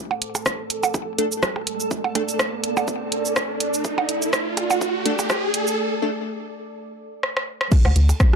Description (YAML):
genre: minimal techno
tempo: 124 BPM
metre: 4/4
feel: swing 55% on 16ths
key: unclear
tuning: A4 = 440 Hz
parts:
  - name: riser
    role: sound effects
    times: 1.5-5.8 s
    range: none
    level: -27 LUFS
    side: right 2 dB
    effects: none
  - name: deep dark ambient pad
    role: texture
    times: 0.0-5.8 s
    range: A3 to D6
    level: -30 LUFS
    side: equal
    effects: chorus, built-in reverb, sidechain pumping
  - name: flickering grainy texture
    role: texture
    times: 0.3-8.4 s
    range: A4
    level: -31 LUFS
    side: right 3 dB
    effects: built-in reverb, sidechain pumping
  - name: electronic percussion blips and rim click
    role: percussion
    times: 0.1-8.4 s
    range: none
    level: -25 LUFS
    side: right 6 dB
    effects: ping-pong delay
  - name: house drum kit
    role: drums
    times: 0.2-8.3 s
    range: crash cymbal, hi-hat, rim click, shaker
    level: -24 LUFS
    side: equal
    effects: high-pass filter on perc, high-pass filter on hats, high-pass filter on snare, high-pass filter on cymbals, high-pass filter on room
  - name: electronic kick drum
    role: drums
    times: 0.5-8.3 s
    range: none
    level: -21 LUFS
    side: equal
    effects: high-pass filter on kick, high-pass filter on room
  - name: wavetable chord stab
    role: stabs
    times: 1.2-6.1 s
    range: A3 to A4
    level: -26 LUFS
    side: left 1 dB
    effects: ping-pong delay
  - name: rubbery square bass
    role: bass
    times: 7.8-8.1 s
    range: D2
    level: -15 LUFS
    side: equal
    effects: sidechain pumping
room: light reverb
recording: dark, warm production, high-pass filter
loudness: -20 LUFS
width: side -6 dB against mid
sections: 0.0-7.7 A section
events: build-up 0.0-7.7; riser 1.5-5.8; break 5.8-7.7; drum fill 7.2-7.7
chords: 0.0 D5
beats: 0.46 0.94 1.43 | 1.91 2.39 2.88 3.36 | 3.85 4.33 4.81 5.30 | 5.78 6.26 6.75 7.23 | 7.72 8.20